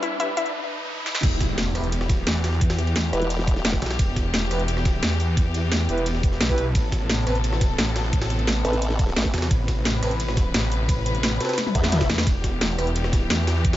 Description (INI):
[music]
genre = dark technical drum and bass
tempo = 174 BPM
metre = 4/4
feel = straight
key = E minor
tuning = A4 = 441 Hz
[part]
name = dark chamber string section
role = sustained chords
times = 0.0-13.8 s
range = C3 to B4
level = -30 LUFS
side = left 2 dB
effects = sidechain pumping
[part]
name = analog pluck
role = arpeggios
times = 0.0-0.5 s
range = E4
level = -26 LUFS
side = left 4 dB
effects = chorus, sidechain pumping, ping-pong delay
[part]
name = drum and bass drum kit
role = drums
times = 0.0-13.7 s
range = crash cymbal, hi-hat, rim click, snare drum, toms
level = -25 LUFS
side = equal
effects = high-pass filter on hats, high-pass filter on snare, high-pass filter on cymbals, high-pass filter on toms, high-pass filter on room
[part]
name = riser, impact and swell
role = sound effects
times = 0.0-2.6, 11.7-12.3 s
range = none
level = -31 LUFS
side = equal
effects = none
[part]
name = mellow brass ensemble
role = stabs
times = 0.2-12.9 s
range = C4 to B4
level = -30 LUFS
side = right 1 dB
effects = ping-pong delay
[part]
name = snarling distorted saw bass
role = bass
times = 1.2-13.8 s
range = E1 to E2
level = -24 LUFS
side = equal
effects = distortion, tube saturation, sidechain pumping
[part]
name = electronic kick drum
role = drums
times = 1.2-13.7 s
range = none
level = -22 LUFS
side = equal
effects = none
[part]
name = jungle sampler-style drum kit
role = drums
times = 1.2-13.8 s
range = hi-hat, ride cymbal, snare drum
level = -33 LUFS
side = equal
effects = high-pass filter on cymbals, high-pass filter on snare, high-pass filter on hats, high-pass filter on room
[part]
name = formant-sweep wobble bass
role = bass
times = 3.1-3.8, 8.6-9.3, 11.8-12.1 s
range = E1 to E2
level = -24 LUFS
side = equal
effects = chorus
[sound]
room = digital ambience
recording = high-pass filter, nothing above 7.7 kHz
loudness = -20 LUFS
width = side -14 dB against mid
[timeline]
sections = 0.0-1.2 A section; 1.2-13.8 B section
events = build-up 0.0-1.2; riser 0.0-1.2; filter sweep on brass ensemble 0.0-1.2; filter sweep 0.0-1.2; break 0.5-1.2; drum fill 1.1, 11.6-12.3; drop 1.2-13.8; impact 1.2-2.6; swell 11.7-12.3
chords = 0.0 Em; 6.8 Amadd9; 12.3 Em